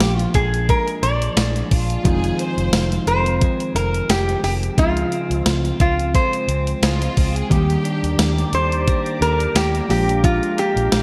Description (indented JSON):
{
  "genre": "1980s-style pop",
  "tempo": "88 BPM",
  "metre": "4/4",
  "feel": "swing 55% on 16ths",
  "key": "Eb major",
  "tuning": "A4 = 440 Hz",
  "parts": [
    { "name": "metal-body resonator slide guitar", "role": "melody", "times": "0.0-11.0 s", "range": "F4 to D5", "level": "-24 LUFS", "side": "equal", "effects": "none" },
    { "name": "bell-like tine electric piano", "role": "accompaniment", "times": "0.0-11.0 s", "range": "Db3 to G4", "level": "-28 LUFS", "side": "equal", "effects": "analog chorus" },
    { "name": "twelve-string electric guitar", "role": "riff", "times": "0.0-11.0 s", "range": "Eb3 to G4", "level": "-31 LUFS", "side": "equal", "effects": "subtle chorus, digital delay" },
    { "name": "vintage muted fingered electric bass", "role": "bass", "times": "0.0-11.0 s", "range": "F1 to Eb2", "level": "-24 LUFS", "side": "equal", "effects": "none" },
    { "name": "clean 12-bit digital drum machine", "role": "drums", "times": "0.0-11.0 s", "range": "hi-hat, kick drum, snare drum, tambourine", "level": "-22 LUFS", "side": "equal", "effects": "gated reverb" },
    { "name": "rich studio violin section", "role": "second line", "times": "1.7-8.3 s", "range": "F4 to C5", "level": "-32 LUFS", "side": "equal", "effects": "digital delay" },
    { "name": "sweeping resonant pad", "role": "sustained chords", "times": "7.5-11.0 s", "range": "Ab3 to D6", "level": "-32 LUFS", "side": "equal", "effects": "chorus" }
  ],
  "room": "moderate lush hall reverb, RT60 1.7 s",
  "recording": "bright 1980s-style digital production",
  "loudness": "-19 LUFS",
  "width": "mono",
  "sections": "0.0-11.0 A section",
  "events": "none",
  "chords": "0.0 Bb7; 2.1 Fm7; 4.8 Dbmaj7; 7.5 Ebmaj7; 9.9 Bb7"
}